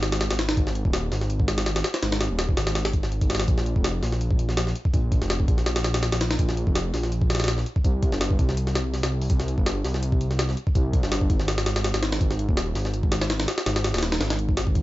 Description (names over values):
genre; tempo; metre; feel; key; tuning
drum and bass, jungle; 165 BPM; 4/4; swing 54% on 16ths; unclear; A4 = 437 Hz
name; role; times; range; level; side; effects
dark detuned saw bass; bass; 0.0-14.8 s; Eb1 to C2; -25 LUFS; equal; none
jungle sampler-style drum kit; drums; 0.0-14.8 s; hi-hat, kick drum, snare drum; -24 LUFS; equal; none
room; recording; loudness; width
little or no reverb; nothing above 7.7 kHz; -21 LUFS; side -16 dB against mid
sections
0.0-14.8 A section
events
none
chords
none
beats
0.21 | 0.57 0.94 1.30 1.66 | 2.03 2.39 2.75 3.12 | 3.48 3.85 4.21 4.57 | 4.94 5.30 5.66 6.03 | 6.39 6.75 7.12 7.48 | 7.84 8.21 8.57 8.94 | 9.30 9.66 10.03 10.39 | 10.75 11.12 11.48 11.85 | 12.21 12.57 12.94 13.30 | 13.66 14.03 14.39 14.75